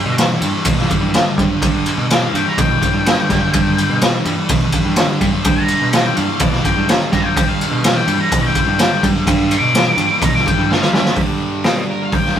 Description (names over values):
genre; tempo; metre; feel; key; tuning
blues rock power trio and southern rock; 126 BPM; 4/4; straight; G mixolydian; A4 = 440 Hz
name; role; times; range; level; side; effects
octave-fuzz lead guitar; melody; 0.0-12.4 s; Bb4 to D6; -20 LUFS; left 3 dB; distortion
sludgy distorted guitar; riff; 0.0-12.4 s; G2 to G3; -20 LUFS; equal; overdrive
growling picked electric bass; bass; 0.1-12.4 s; G2 to G3; -20 LUFS; right 1 dB; overdrive
raw garage drum kit; drums; 0.2-12.4 s; hi-hat, kick drum, ride cymbal, snare drum; -16 LUFS; equal; none
room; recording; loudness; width
moderate studio reverb, RT60 0.6 s; rough rehearsal-room recording, warm saturation; -13 LUFS; side -9 dB against mid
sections
0.0-11.2 A section; 11.2-12.4 B section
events
lead electric guitar solo 0.0-11.2; drum fill 10.7-11.2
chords
0.0 G